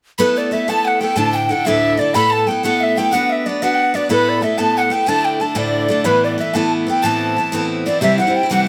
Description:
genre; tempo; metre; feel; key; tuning
celtic folk, Celtic jig; 123 BPM (dotted quarters); 6/8; straight; A dorian; A4 = 440 Hz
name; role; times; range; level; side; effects
wooden flute; melody; 0.2-8.7 s; B4 to B5; -20 LUFS; equal; plate reverb
breathy tin whistle; second line; 0.2-8.7 s; D5 to B5; -26 LUFS; equal; none
picked steel-string acoustic guitar; accompaniment; 0.2-8.7 s; D2 to B4; -21 LUFS; equal; none
room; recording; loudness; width
moderate small room reverb, RT60 0.6 s; none; -17 LUFS; mono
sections
0.2-8.0 A section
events
none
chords
0.2 Asus2; 1.2 Dsus2; 2.1 Asus2; 3.1 Bm; 4.1 Asus2; 5.1 Dsus2; 6.1 Asus2; 7.0 Amadd9; 8.0 C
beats
| 0.19 0.68 | 1.16 1.65 | 2.14 2.63 | 3.12 3.61 | 4.10 4.59 | 5.08 5.57 | 6.05 6.54 | 7.03 7.52 | 8.01 8.50

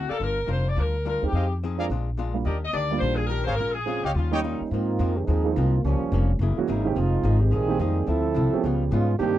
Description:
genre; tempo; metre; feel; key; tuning
jazz; 213 BPM; 4/4; swing 61% on 8ths; Eb major; A4 = 441 Hz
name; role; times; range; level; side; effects
clear saxophone section; melody; 0.0-4.6 s; Eb4 to Eb5; -28 LUFS; left 2 dB; none
archtop guitar, miked and amplified; accompaniment; 0.0-9.4 s; G2 to Bb4; -34 LUFS; left 8 dB; none
upright bass; bass; 0.0-9.4 s; F1 to Ab2; -24 LUFS; equal; none
clear trumpet section; stabs; 0.1-4.4 s; G4 to G5; -29 LUFS; equal; none
warm baby grand piano; accompaniment; 1.2-9.4 s; Eb3 to G4; -29 LUFS; right 8 dB; none
clear trombone section; second line; 4.4-9.4 s; Eb3 to A4; -26 LUFS; right 4 dB; none
room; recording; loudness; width
little or no reverb; dry, close 1970s-style studio recording; -22 LUFS; side -13 dB against mid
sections
0.0-4.7 A section; 4.7-9.4 B section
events
trombone section solo 4.7-9.4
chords
0.2 Gm7; 1.3 Fm7; 1.9 Bb7; 2.5 Ebmaj7; 3.6 Bbm7; 4.1 Eb9; 4.7 Ab69; 5.8 Gm7b5; 6.4 Gb9; 7.0 Fm11; 8.1 Dm9; 8.6 Db7#11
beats
| 0.21 0.49 0.77 1.05 | 1.33 1.61 1.90 2.18 | 2.46 2.74 3.02 3.30 | 3.58 3.87 4.15 4.43 | 4.71 4.99 5.27 5.55 | 5.83 6.12 6.40 6.68 | 6.96 7.24 7.52 7.80 | 8.08 8.36 8.64 8.93 | 9.21

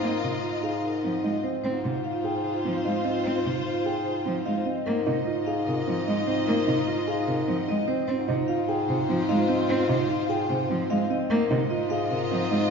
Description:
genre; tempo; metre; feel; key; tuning
classical, minimalist pattern music; 149 BPM; 4/4; straight; Ab major; A4 = 440 Hz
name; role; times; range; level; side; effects
vibraphone with medium hard mallets; melody; 0.0-12.7 s; Bb4 to G5; -31 LUFS; left 5 dB; none
wooden-headed alto flute; second line; 0.0-12.7 s; Eb4 to F4; -33 LUFS; right 2 dB; none
dark cello; accompaniment; 0.0-12.7 s; C3 to C4; -29 LUFS; right 2 dB; none
rich chamber violin section; sustained chords; 0.0-12.7 s; F4 to Eb5; -34 LUFS; left 4 dB; none
dark concert grand piano; arpeggios; 0.0-12.7 s; C4 to Ab4; -30 LUFS; right 6 dB; none
clear bass clarinet; bass; 0.0-12.7 s; Ab2; -31 LUFS; left 3 dB; none
room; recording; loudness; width
wet scoring stage reverb, RT60 1.9 s; heard from further back in the room, nothing above 7.5 kHz; -23 LUFS; side -5 dB against mid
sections
0.0-12.7 A section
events
none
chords
0.0 Fm7/Ab; 1.6 Ab6; 4.9 Fm7/Ab; 8.1 Ab6; 11.3 Fm7/Ab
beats
| 0.03 0.43 0.83 1.24 | 1.64 2.04 2.44 2.85 | 3.25 3.65 4.05 4.46 | 4.86 5.26 5.67 6.07 | 6.47 6.87 7.28 7.68 | 8.08 8.48 8.89 9.29 | 9.69 10.10 10.50 10.90 | 11.30 11.71 12.11 12.51

